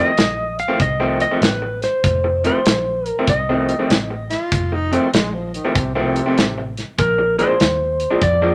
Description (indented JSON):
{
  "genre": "electric blues shuffle",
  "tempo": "97 BPM",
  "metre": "4/4",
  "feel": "swing 65% on 8ths",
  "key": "F mixolydian",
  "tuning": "A4 = 440 Hz",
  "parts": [
    { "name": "clean lap steel guitar", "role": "melody", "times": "0.0-8.5 s", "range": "Bb4 to F5", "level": "-22 LUFS", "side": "equal", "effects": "none" },
    { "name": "electric guitar through a small old amp", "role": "riff", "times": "0.0-8.5 s", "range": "F2 to D4", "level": "-23 LUFS", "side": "equal", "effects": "none" },
    { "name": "vintage muted fingered electric bass", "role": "bass", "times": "0.2-8.5 s", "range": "F1 to F2", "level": "-28 LUFS", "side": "equal", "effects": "none" },
    { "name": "natural country drum kit", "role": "drums", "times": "0.2-8.4 s", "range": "hi-hat, kick drum, snare drum", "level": "-21 LUFS", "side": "equal", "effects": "none" },
    { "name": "breathy tenor saxophone", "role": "second line", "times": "4.3-6.8 s", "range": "C3 to F4", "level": "-26 LUFS", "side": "equal", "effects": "none" }
  ],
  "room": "moderate club reverb, RT60 0.8 s",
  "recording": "none",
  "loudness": "-18 LUFS",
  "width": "mono",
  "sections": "0.0-8.5 A section",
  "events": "none",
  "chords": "0.0 F7; 7.0 Bb7"
}